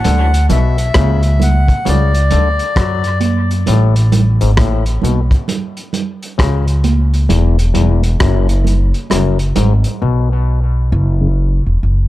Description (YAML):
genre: dub reggae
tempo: 66 BPM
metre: 4/4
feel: swing 63% on 16ths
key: unclear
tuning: A4 = 440 Hz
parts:
  - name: melodica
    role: melody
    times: 0.0-3.2 s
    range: D5 to F#5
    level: -20 LUFS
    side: left 2 dB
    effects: dub echo
  - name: overdriven clav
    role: riff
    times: 0.0-10.3 s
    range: E2 to F#3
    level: -22 LUFS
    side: left 9 dB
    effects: dub echo
  - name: crunchy breakbeat drum kit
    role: drums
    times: 0.0-10.0 s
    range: hi-hat, kick drum, rim click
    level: -18 LUFS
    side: equal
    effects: none
  - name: congas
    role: percussion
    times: 0.0-9.8 s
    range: none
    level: -21 LUFS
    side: right 7 dB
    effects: dub echo
  - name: upright bass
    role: bass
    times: 0.1-12.1 s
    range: E1 to F#2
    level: -12 LUFS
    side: equal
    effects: none
  - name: tonewheel organ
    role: accompaniment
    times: 11.2-11.3 s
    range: F#2 to C#3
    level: -19 LUFS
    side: left 1 dB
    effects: overdrive, chorus vibrato, low-pass filter
room: studio reverb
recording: dark, warm production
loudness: -11 LUFS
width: side -16 dB against mid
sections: 0.0-10.9 A section; 10.9-12.1 B section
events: break 0.0-10.9; drums muted 10.0-10.9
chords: 0.0 Dmaj7; 3.7 A; 7.3 E5; 10.9 F#7(no3)